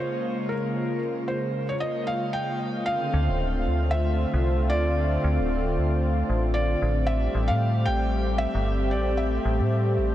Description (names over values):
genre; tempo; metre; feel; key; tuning
IDM; 114 BPM; 4/4; swing 56% on 16ths; unclear; A4 = 440 Hz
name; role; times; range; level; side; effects
felt-muted upright piano; melody; 0.0-10.1 s; Bb4 to G5; -30 LUFS; right 1 dB; shimmer reverb, analog delay
warm analog pad; sustained chords; 0.0-10.1 s; Db3 to G4; -27 LUFS; left 1 dB; chorus, shimmer reverb
metallic FM bass; bass; 3.1-10.1 s; D1 to A2; -24 LUFS; equal; none
room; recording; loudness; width
moderate huge ambient reverb, RT60 9.5 s; dreamy mix soaked in reverb; -23 LUFS; side -12 dB against mid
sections
0.0-2.9 A section; 2.9-10.1 B section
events
none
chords
0.0 Bbm7; 2.9 Dm7; 7.1 Am7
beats
0.24 | 0.77 1.29 1.82 2.35 | 2.87 3.40 3.92 4.45 | 4.98 5.50 6.03 6.56 | 7.08 7.61 8.13 8.66 | 9.19 9.71